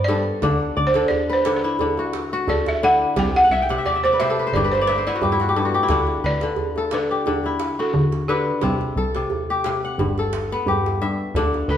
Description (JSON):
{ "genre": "west african traditional, West African string and xylophone music", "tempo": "88 BPM", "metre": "4/4", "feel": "swing 54% on 16ths", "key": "D mixolydian", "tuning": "A4 = 440 Hz", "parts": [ { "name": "balafon", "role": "melody", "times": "0.0-11.8 s", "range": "G4 to G5", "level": "-21 LUFS", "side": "right 2 dB", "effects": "none" }, { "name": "kora", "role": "arpeggios", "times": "0.0-11.8 s", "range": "G2 to G5", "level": "-21 LUFS", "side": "left 3 dB", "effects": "none" }, { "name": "plucky analog bass", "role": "bass", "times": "0.0-11.8 s", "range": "G1 to D3", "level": "-24 LUFS", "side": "equal", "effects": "none" }, { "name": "djembe", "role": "percussion", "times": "0.4-11.7 s", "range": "none", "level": "-28 LUFS", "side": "right 5 dB", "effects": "none" } ], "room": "wet stone room reverb, RT60 1.3 s", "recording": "band playing live in one room", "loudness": "-18 LUFS", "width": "side -9 dB against mid", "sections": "0.0-5.9 A section; 5.9-11.8 B section", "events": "balafon solo 0.0-5.9; kora fill 3.4-5.9", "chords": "0.4 D; 3.2 C; 4.5 G; 5.9 D; 8.6 C5; 10.0 G", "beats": "| 0.42 1.11 1.79 2.48 | 3.16 3.85 4.53 5.21 | 5.89 6.58 7.26 7.94 | 8.62 9.30 9.98 10.67 | 11.35" }